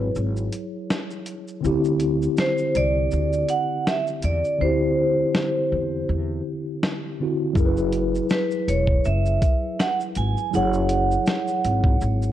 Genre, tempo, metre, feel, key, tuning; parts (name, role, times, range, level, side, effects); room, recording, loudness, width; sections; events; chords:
lo-fi hip hop; 81 BPM; 4/4; swing 56% on 16ths; A4 = 440 Hz
vibraphone with medium hard mallets; melody; 0.0-12.0 s; B4 to G#5; -24 LUFS; right 2 dB; low-pass filter, analog delay
mellow tine electric piano; accompaniment; 0.0-12.3 s; D3 to C#5; -25 LUFS; left 1 dB; medium stereo tremolo, cassette tape, low-pass filter
upright bass; bass; 0.0-12.3 s; E1 to E2; -24 LUFS; equal
dusty soul sampler-style drum kit; drums; 0.2-12.3 s; hi-hat, kick drum, shaker, snare drum; -24 LUFS; equal
light reverb; cassette tape; -20 LUFS; side -12 dB against mid
0.0-12.3 A section
break 0.0-7.6; hi-hats muted 4.6-7.6
0.0 F#7sus2; 1.6 D9sus4; 7.6 F#9sus4